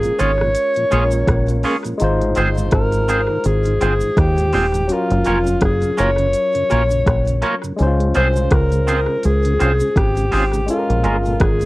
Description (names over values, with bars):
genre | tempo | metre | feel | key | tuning
lovers rock reggae | 83 BPM | 4/4 | swing 57% on 16ths | Ab major | A4 = 440 Hz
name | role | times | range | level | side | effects
breathy alto saxophone | melody | 0.0-11.7 s | F4 to Db5 | -20 LUFS | equal | cassette tape, tape echo
barky tine electric piano | accompaniment | 0.0-11.7 s | Gb3 to C5 | -24 LUFS | left 2 dB | overdrive, tape echo
mellow tonewheel organ | accompaniment | 0.0-11.7 s | Gb2 to Ab4 | -26 LUFS | right 2 dB | chorus vibrato, slow rotary speaker
deep dub fingered electric bass | bass | 0.0-11.6 s | Eb1 to Eb2 | -18 LUFS | equal | none
deep house drum kit | drums | 0.0-11.7 s | hi-hat, kick drum, rim click | -20 LUFS | equal | cassette tape, tape echo
cabasa | percussion | 0.0-11.7 s | none | -40 LUFS | right 4 dB | tape echo
twangy electric guitar | stabs | 0.2-11.2 s | Ab3 to Db5 | -20 LUFS | right 2 dB | wide subtle chorus
room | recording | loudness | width
light reverb | home recording on cassette | -14 LUFS | side -19 dB against mid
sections
0.0-11.7 A section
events
none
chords
0.0 Bbm7; 2.0 Ab6; 4.9 Gbmaj7; 7.8 Dbmaj7; 10.7 Bbm7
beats
0.55 1.28 | 2.00 2.73 3.45 4.17 | 4.90 5.62 6.34 7.07 | 7.79 8.51 9.24 9.96 | 10.68 11.41